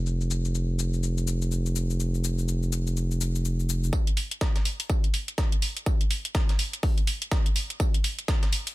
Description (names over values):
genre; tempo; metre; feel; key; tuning
bass house; 124 BPM; 4/4; swing 60% on 16ths; unclear; A4 = 440 Hz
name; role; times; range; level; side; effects
growling FM bass; bass; 0.0-3.9 s; F1; -25 LUFS; equal; tube saturation, sidechain pumping
electronic cabasa and hi-hat; drums; 0.1-8.7 s; none; -33 LUFS; left 1 dB; low-pass filter on hats, low-pass filter on perc, low-pass filter on room
breakbeat sampler-style drum kit; drums; 3.9-8.7 s; hi-hat, snare drum, tambourine; -37 LUFS; right 2 dB; sidechain pumping on perc, high-pass filter on perc, high-pass filter on snare, sidechain pumping on hats, high-pass filter on hats
electronic kick drum; drums; 3.9-8.4 s; none; -24 LUFS; equal; none
room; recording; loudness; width
little or no reverb; none; -24 LUFS; side -18 dB against mid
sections
0.0-3.9 A section; 3.9-8.7 B section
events
build-up 3.9-8.7; drum fill 7.8-8.7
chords
none